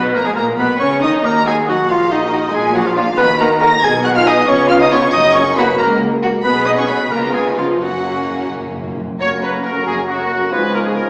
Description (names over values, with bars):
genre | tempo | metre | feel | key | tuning
quick classical-period movement for symphony orchestra | 92 BPM (dotted quarters) | 6/8 | straight | F# major | A4 = 440 Hz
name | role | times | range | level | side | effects
dark clarinet | second line | 0.0-11.1 s | A#3 to A#5 | -24 LUFS | equal | none
mellow flute section | second line | 0.0-11.1 s | D#4 to C#6 | -25 LUFS | equal | none
rich chamber violin section | second line | 0.0-11.1 s | G#3 to C#5 | -26 LUFS | equal | none
warm oboe | second line | 0.0-11.1 s | D#4 to A#5 | -24 LUFS | equal | none
warm chamber viola section | accompaniment | 0.0-11.1 s | D#3 to A#4 | -23 LUFS | equal | none
dark French horn section | sustained chords | 0.0-11.1 s | G#3 to G#4 | -25 LUFS | equal | none
warm chamber cello section | bass | 0.0-11.1 s | C#2 to D#3 | -26 LUFS | equal | none
warm chamber double bass section | bass | 0.0-11.1 s | F#1 to D#2 | -31 LUFS | equal | none
rich chamber violin section | melody | 0.2-11.1 s | D#5 to A#6 | -23 LUFS | equal | none
timpani | percussion | 5.1-5.7, 7.8-9.1 s | F#2 | -36 LUFS | equal | none
warm bassoon | accompaniment | 9.2-11.1 s | E#3 to F#3 | -28 LUFS | equal | none
bright trumpet section | stabs | 9.2-11.0 s | F#4 to C#5 | -22 LUFS | equal | none
room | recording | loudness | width
wet recital hall reverb, RT60 1.3 s | recorded in a church or concert hall, small speaker sound | -15 LUFS | mono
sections
0.0-9.2 A section; 9.2-11.1 A section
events
timpani fill 7.8-9.2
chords
0.0 G#madd9/A#; 0.6 Badd9; 1.2 D#m; 2.5 A#; 3.2 D#m; 3.8 G#m/B; 4.5 C#7; 5.1 F#; 6.4 G#m/B; 7.1 C#7; 7.8 F#; 10.5 C#7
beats
0.59 | 1.25 1.90 | 2.54 3.19 | 3.84 4.48 | 5.13 5.79 | 6.45 7.12 | 7.81 8.51 | 9.20 9.86 | 10.51